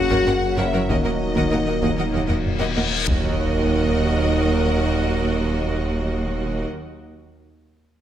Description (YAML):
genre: cinematic, hybrid orchestral and electronic film score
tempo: 96 BPM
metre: 4/4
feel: straight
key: Eb minor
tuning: A4 = 440 Hz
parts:
  - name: rich studio violin section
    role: melody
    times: 0.0-6.7 s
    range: Eb5 to Gb5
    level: -32 LUFS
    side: left 4 dB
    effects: none
  - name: dark analog pad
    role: sustained chords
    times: 0.0-6.7 s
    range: Bb3 to Bb4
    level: -28 LUFS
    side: equal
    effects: wide subtle chorus
  - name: mellow trombone section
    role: sustained chords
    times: 0.0-6.7 s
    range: Bb2 to Gb3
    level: -30 LUFS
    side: right 3 dB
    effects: none
  - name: warm French horn section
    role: sustained chords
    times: 0.0-6.7 s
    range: Eb4 to Gb4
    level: -28 LUFS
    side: left 4 dB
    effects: none
  - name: saturated sub bass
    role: bass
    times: 0.0-6.6 s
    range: Eb1 to Gb1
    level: -29 LUFS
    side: equal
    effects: none
  - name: warm symphonic violin section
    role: second line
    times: 0.1-6.7 s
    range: Db5 to Gb5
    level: -31 LUFS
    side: left 3 dB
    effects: none
  - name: rich symphonic viola section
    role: accompaniment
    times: 0.1-6.6 s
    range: Bb3 to Bb4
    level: -29 LUFS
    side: right 1 dB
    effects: none
  - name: soft round pluck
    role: arpeggios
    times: 0.1-2.9 s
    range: Eb3 to Gb4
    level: -30 LUFS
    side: left 3 dB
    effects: chorus, tape echo
  - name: rich symphonic cello section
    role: bass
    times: 0.1-6.7 s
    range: Eb2 to Gb2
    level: -28 LUFS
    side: right 2 dB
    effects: none
  - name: taiko ensemble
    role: drums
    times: 0.1-4.3 s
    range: none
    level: -27 LUFS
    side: equal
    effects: none
  - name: clear tuba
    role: bass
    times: 0.3-6.6 s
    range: Gb1 to Eb2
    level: -28 LUFS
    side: right 4 dB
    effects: none
  - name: rich symphonic double bass section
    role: bass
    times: 0.3-6.6 s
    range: Gb1 to Eb2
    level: -27 LUFS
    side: right 2 dB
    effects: none
  - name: reverse cymbal and impact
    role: sound effects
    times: 2.3-7.2 s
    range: none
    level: -29 LUFS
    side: left 3 dB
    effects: none
room: wet scoring stage reverb, RT60 1.7 s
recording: none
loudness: -19 LUFS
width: side -10 dB against mid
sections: 0.0-3.4 A section; 3.4-5.9 B section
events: reverse cymbal 2.3-3.4; impact 3.4-5.9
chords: 0.0 Gb; 0.9 Ebm